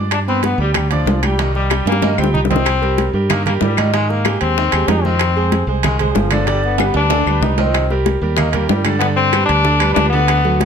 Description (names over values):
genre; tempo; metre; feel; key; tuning
latin, salsa; 189 BPM; 4/4; straight; C minor; A4 = 440 Hz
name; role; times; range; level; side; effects
bright concert grand piano; accompaniment; 0.0-10.7 s; D3 to Eb6; -20 LUFS; right 4 dB; none
fingered electric bass; bass; 0.0-10.7 s; G1 to Ab2; -18 LUFS; equal; none
brilliant trombone; melody; 0.1-10.7 s; F3 to Eb4; -19 LUFS; left 5 dB; none
bongos; percussion; 0.1-10.7 s; none; -24 LUFS; left 10 dB; none
claves; percussion; 0.1-10.4 s; none; -28 LUFS; left 8 dB; none
congas; percussion; 0.1-10.7 s; none; -25 LUFS; equal; none
timbales; percussion; 0.1-10.7 s; none; -23 LUFS; right 8 dB; none
room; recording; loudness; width
moderate large studio reverb, RT60 1.4 s; close, detailed microphones; -13 LUFS; side -7 dB against mid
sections
0.0-2.7 A section; 2.7-10.7 B section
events
drum fill 1.7-2.7, 6.8-7.7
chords
0.1 G; 1.4 Cm7; 3.9 Abmaj7; 5.2 Fm7; 6.5 G; 7.7 Cm7; 9.0 G